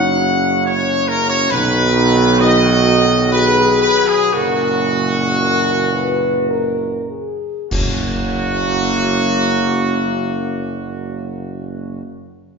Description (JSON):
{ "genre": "classical, ceremonial fanfare", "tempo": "48-70 BPM", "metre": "3/4", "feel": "straight", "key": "F# major", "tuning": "A4 = 439 Hz", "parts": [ { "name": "bright trumpet section", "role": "melody", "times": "0.0-12.0 s", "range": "F#4 to F#5", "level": "-17 LUFS", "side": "equal", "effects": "none" }, { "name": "clear trombone section", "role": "sustained chords", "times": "0.0-12.0 s", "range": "A#2 to A#3", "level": "-24 LUFS", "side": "right 2 dB", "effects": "none" }, { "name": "dark French horn section", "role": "sustained chords", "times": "0.0-12.0 s", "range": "C#4 to B4", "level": "-21 LUFS", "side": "left 2 dB", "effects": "none" }, { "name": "mellow tuba", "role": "bass", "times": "0.0-12.0 s", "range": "F#1 to B1", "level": "-19 LUFS", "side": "right 2 dB", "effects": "none" }, { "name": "clash cymbals and concert bass drum", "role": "percussion", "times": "7.7-10.1 s", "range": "none", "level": "-23 LUFS", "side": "left 1 dB", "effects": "none" } ], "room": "wet recital hall reverb, RT60 1.6 s", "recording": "recorded in a church or concert hall, nothing above 7.5 kHz", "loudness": "-13 LUFS", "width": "side -5 dB against mid", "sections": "0.0-7.7 A section; 7.7-11.3 B section", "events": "slowing down 0.2-7.7; band accent 7.7-8.9", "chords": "0.0 F#5; 1.5 B; 4.3 F#", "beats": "0.66 | 1.52 2.41 3.34 | 4.34 5.40 6.51 | 7.72 8.92 10.12" }